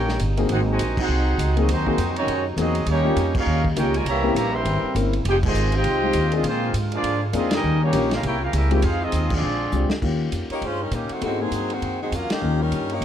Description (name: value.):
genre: jazz, big band swing.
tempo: 201 BPM.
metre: 4/4.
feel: swing 60% on 8ths.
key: Eb major, Eb mixolydian from 10.0 s.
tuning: A4 = 441 Hz.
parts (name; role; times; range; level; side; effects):
warm trumpet section; melody; 0.0-9.9 s; Ab3 to C6; -26 LUFS; right 1 dB; none.
bright trombone section; second line; 0.0-9.9 s; C3 to G4; -26 LUFS; right 1 dB; none.
clear trombone section; sustained chords; 0.0-10.0 s; C3 to Ab4; -33 LUFS; equal; none.
upright bass; bass; 0.0-13.0 s; F1 to Bb2; -23 LUFS; equal; none.
vintage drum kit; drums; 0.1-13.0 s; crash cymbal, hi-hat, kick drum, ride cymbal, snare drum; -31 LUFS; equal; none.
warm grand piano; accompaniment; 0.4-13.0 s; Ab3 to Bb4; -27 LUFS; left 4 dB; none.
bright saxophone section; melody; 10.5-13.0 s; Eb3 to Db5; -26 LUFS; left 1 dB; none.
room: light reverb.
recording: dark, warm production.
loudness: -19 LUFS.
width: side -10 dB against mid.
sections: 0.0-10.0 A section; 10.0-13.0 B section.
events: band accent 0.9, 3.3, 5.4, 7.5, 9.3, 12.3; drum fill 9.7.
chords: 0.5 Ab7; 2.9 Eb7; 4.1 C7b9; 5.3 Fm7; 6.4 Bb7; 7.6 Eb7; 8.2 C7b9; 8.8 Fm7; 9.4 Bb13; 10.0 Eb7; 11.2 Ab7; 12.4 Eb7.